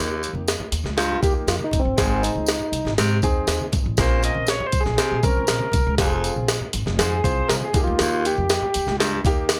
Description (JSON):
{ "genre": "uptempo 1960s-style soul", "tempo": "120 BPM", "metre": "4/4", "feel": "straight", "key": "unclear", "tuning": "A4 = 442 Hz", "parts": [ { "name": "warm upright piano", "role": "accompaniment", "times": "0.0-9.6 s", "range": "Bb3 to Bb4", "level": "-30 LUFS", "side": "equal", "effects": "plate reverb" }, { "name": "raspy baritone saxophone", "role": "riff", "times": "0.0-9.2 s", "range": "Eb2 to C3", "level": "-28 LUFS", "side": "equal", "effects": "none" }, { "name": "upright bass", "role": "bass", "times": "0.0-9.6 s", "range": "F1 to Bb2", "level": "-28 LUFS", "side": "equal", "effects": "none" }, { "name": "congas", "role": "percussion", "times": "0.1-9.6 s", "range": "none", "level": "-38 LUFS", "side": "equal", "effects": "none" }, { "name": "jungle sampler-style drum kit", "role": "drums", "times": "0.2-9.6 s", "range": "hi-hat, kick drum, snare drum", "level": "-25 LUFS", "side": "equal", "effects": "none" }, { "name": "tambourine", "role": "percussion", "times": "0.2-9.6 s", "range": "none", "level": "-36 LUFS", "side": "equal", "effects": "none" }, { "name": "tonewheel organ", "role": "melody", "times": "1.0-9.0 s", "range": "C4 to Eb5", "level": "-27 LUFS", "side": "equal", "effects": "stopped rotary speaker, plate reverb" } ], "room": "light reverb", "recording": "none", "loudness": "-21 LUFS", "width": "mono", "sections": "0.0-9.6 A section", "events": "tonewheel organ solo 0.0-9.6", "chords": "0.0 Eb; 2.0 Ab; 4.0 Bbmadd9; 6.0 Fm; 7.7 Eb" }